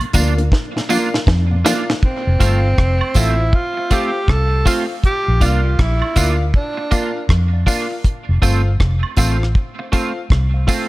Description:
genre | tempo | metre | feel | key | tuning
roots reggae | 80 BPM | 4/4 | swing 63% on 16ths | F major | A4 = 439 Hz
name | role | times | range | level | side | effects
mellow tonewheel organ | accompaniment | 0.0-1.9 s | Bb2 to D4 | -26 LUFS | left 1 dB | overdrive, chorus vibrato, slow rotary speaker, dub echo
deep reggae drum kit | drums | 0.0-10.9 s | hi-hat, kick drum, rim click, snare drum | -17 LUFS | equal | none
clean electric guitar | accompaniment | 0.1-10.9 s | A3 to F4 | -24 LUFS | right 4 dB | analog chorus, tape echo
warm upright piano | stabs | 0.1-10.9 s | F4 to F5 | -26 LUFS | left 3 dB | none
vintage muted fingered electric bass | bass | 0.1-10.7 s | F1 to F2 | -16 LUFS | equal | none
tambourine and woodblock | percussion | 0.1-10.9 s | none | -27 LUFS | right 5 dB | none
breathy tenor saxophone | melody | 2.1-7.3 s | C4 to A4 | -22 LUFS | right 1 dB | tape echo
room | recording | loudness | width
small room reverb | none | -14 LUFS | side -19 dB against mid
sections
0.0-2.0 A section; 2.0-10.9 B section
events
drum fill 0.5-2.0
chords
0.0 Bb; 2.0 F; 5.0 Bb; 8.0 F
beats
0.52 1.27 | 2.02 2.78 3.53 4.28 | 5.03 5.79 6.54 7.29 | 8.04 8.80 9.55 10.30

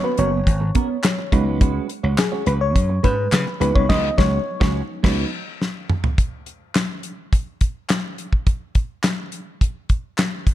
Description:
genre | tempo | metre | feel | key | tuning
early-eighties boogie funk | 105 BPM | 4/4 | straight | unclear | A4 = 442 Hz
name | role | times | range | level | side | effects
FM electric piano with auto-pan | accompaniment | 0.0-5.3 s | F#3 to D#5 | -24 LUFS | left 2 dB | none
clean electric guitar | riff | 0.0-5.2 s | G#3 to C#5 | -26 LUFS | right 8 dB | lush chorus
slap bass | bass | 0.2-5.2 s | F#1 to C#3 | -21 LUFS | equal | tube saturation
damped 70s drum kit | drums | 0.2-10.5 s | crash cymbal, handclaps, hi-hat, kick drum, snare drum, toms | -19 LUFS | equal | none
group handclap | percussion | 1.0-10.3 s | none | -34 LUFS | left 4 dB | none
room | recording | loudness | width
light reverb | dark, warm production | -18 LUFS | side -13 dB against mid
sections
0.0-6.2 A section; 6.2-10.5 B section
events
FM electric piano solo 0.0-6.2; band accent 3.9-6.2; drum fill 5.6-6.2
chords
0.0 G#m11; 1.3 C#7sus4; 6.2 N.C.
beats
0.47 1.04 | 1.61 2.18 2.75 3.33 | 3.90 4.47 5.04 5.61 | 6.18 6.75 7.33 7.90 | 8.47 9.04 9.61 10.18

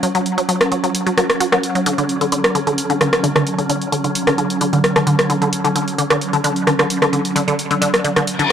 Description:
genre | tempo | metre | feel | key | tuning
driving peak-time techno | 131 BPM | 4/4 | straight | unclear | A4 = 440 Hz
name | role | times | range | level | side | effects
resonant blip pluck | riff | 0.0-8.4 s | D3 to F#3 | -18 LUFS | equal | phaser, tape echo
swarming drone | drone | 0.0-8.5 s | F#3 to C#4 | -22 LUFS | right 2 dB | built-in reverb
punchy analog drum machine | drums | 0.0-8.5 s | hi-hat, rim click | -19 LUFS | equal | overdrive
reverse cymbal | sound effects | 8.4-8.5 s | none | -18 LUFS | left 6 dB | none
room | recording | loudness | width
moderate lush hall reverb, RT60 1.9 s | dry, gritty hardware recording | -15 LUFS | side -8 dB against mid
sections
0.0-8.5 A section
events
filter sweep on synth arpeggio sound 0.0-8.5; reverse cymbal 8.4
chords
0.0 F#5; 1.9 Dmaj7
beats
| 0.03 0.49 0.95 1.40 | 1.86 2.32 2.78 3.24 | 3.69 4.15 4.61 5.07 | 5.53 5.98 6.44 6.90 | 7.36 7.82 8.27

